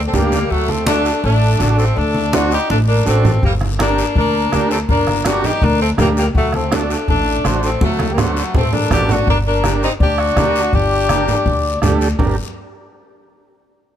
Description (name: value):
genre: latin, cumbia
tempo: 164 BPM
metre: 4/4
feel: straight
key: G harmonic minor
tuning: A4 = 440 Hz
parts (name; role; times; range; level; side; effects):
- upright bass; bass; 0.0-12.4 s; G1 to D2; -18 LUFS; equal; none
- warm saxophone section; melody; 0.1-11.8 s; F#3 to G4; -19 LUFS; left 1 dB; none
- mellow accordion; second line; 0.1-11.8 s; F#4 to Eb5; -22 LUFS; left 4 dB; none
- overdriven combo organ; accompaniment; 0.1-12.4 s; Bb3 to C5; -23 LUFS; right 5 dB; none
- congas; percussion; 0.1-12.3 s; none; -22 LUFS; right 2 dB; none
- guiro; percussion; 0.1-12.3 s; none; -30 LUFS; left 7 dB; none
- bombo; percussion; 3.4-12.3 s; none; -20 LUFS; left 1 dB; none
room: light reverb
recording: none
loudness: -13 LUFS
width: side -10 dB against mid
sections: 0.0-9.3 A section; 9.3-12.2 B section; 12.2-13.7 C section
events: drum fill 2.7-3.4, 7.8-9.3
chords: 0.0 Gm; 0.5 D7; 3.4 Gm; 6.4 D7; 9.3 Gm